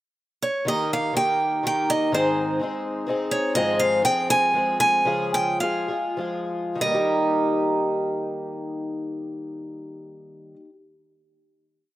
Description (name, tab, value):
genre	acoustic folk duo or small band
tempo	93-124 BPM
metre	3/4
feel	straight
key	Eb mixolydian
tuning	A4 = 439 Hz
part	picked steel-string acoustic guitar	melody	0.4-10.6 s	C5 to Ab5	-23 LUFS	right 2 dB	none
part	picked twelve-string acoustic guitar	accompaniment	0.6-10.7 s	Ab2 to Ab4	-24 LUFS	left 1 dB	none
room	light reverb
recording	rough home demo mix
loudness	-21 LUFS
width	side -15 dB against mid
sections	0.0-0.7 pickup bar; 0.7-6.8 interlude; 6.8-10.7 final chord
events	slowing down 3.6-6.8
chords	0.0 N.C.; 0.7 Eb; 2.1 Ab; 3.6 Fm7/Ab; 5.1 Db; 6.8 Eb